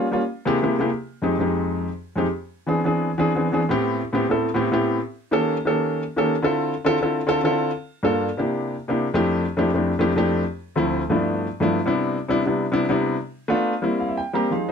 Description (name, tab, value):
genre	jazz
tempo	176 BPM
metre	4/4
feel	straight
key	unclear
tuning	A4 = 445 Hz
part	warm concert grand piano	solo	0.0-14.7 s	D2 to Bb5	-20 LUFS	equal	none
room	light reverb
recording	dark, warm production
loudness	-20 LUFS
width	side -6 dB against mid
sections	0.0-3.6 A section; 3.6-14.5 B section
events	grand piano fill 13.8-14.5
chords	0.2 C7b13; 0.9 Fm7; 2.3 E7b13; 3.6 Am9; 5.0 D#7#11; 6.3 Dm9; 7.7 Gm7; 8.4 C7; 9.1 Fmaj13; 10.4 Dm7; 11.1 G13; 11.8 Cmaj9; 13.1 Bm7b5; 13.8 C7